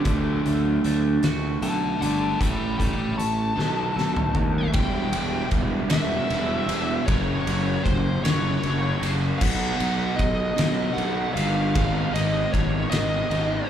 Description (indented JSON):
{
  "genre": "quiet-loud alternative rock",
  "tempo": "51 BPM (dotted quarters)",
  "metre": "6/8",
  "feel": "straight",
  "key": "unclear",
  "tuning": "A4 = 440 Hz",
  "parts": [
    { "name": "twelve-string electric guitar", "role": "arpeggios", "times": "0.0-4.7 s", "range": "A2 to F#4", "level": "-33 LUFS", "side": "right 3 dB", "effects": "phaser, digital delay" },
    { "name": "crunchy overdriven guitar", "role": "riff", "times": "0.0-13.7 s", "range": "F#2 to A4", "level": "-28 LUFS", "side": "right 2 dB", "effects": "none" },
    { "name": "fuzz fingered electric bass", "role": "bass", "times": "0.0-13.6 s", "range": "E1 to D#2", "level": "-26 LUFS", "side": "equal", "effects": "overdrive" },
    { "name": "oversized low-tuned drum kit", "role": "drums", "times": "0.1-13.5 s", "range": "crash cymbal, hi-hat, kick drum, ride cymbal, snare drum, toms", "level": "-27 LUFS", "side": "equal", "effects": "none" },
    { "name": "bluesy overdriven lead guitar", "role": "melody", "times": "1.6-13.7 s", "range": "C5 to B5", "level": "-28 LUFS", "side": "left 1 dB", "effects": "distortion, digital delay" }
  ],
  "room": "studio ambience",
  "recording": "live gig heard through the venue's PA, club reverb",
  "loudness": "-21 LUFS",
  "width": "side -9 dB against mid",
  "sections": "0.0-4.7 A section; 4.7-13.7 B section",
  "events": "lead electric guitar solo 0.0-4.7; drum fill 3.6-4.7",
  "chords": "0.1 D; 2.4 A; 3.6 B7; 4.7 Em; 7.1 F#; 9.4 B; 11.8 G#m"
}